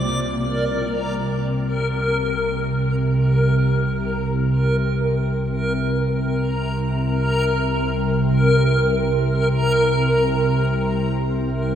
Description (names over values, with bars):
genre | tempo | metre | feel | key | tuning
dark ambient drone | free time | none | none | unclear | A4 = 440 Hz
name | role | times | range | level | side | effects
organ-like drone | drone | 0.0-11.8 s | C2 to C3 | -20 LUFS | equal | ensemble chorus, built-in reverb
backwards swelling texture | texture | 0.0-11.8 s | Bb4 | -22 LUFS | equal | built-in reverb, shimmer reverb
room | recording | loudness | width
wet echo chamber reverb, RT60 2.0 s | echo-heavy mix | -18 LUFS | side -9 dB against mid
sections
0.0-11.8 A section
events
none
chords
0.0 Bbsus2/C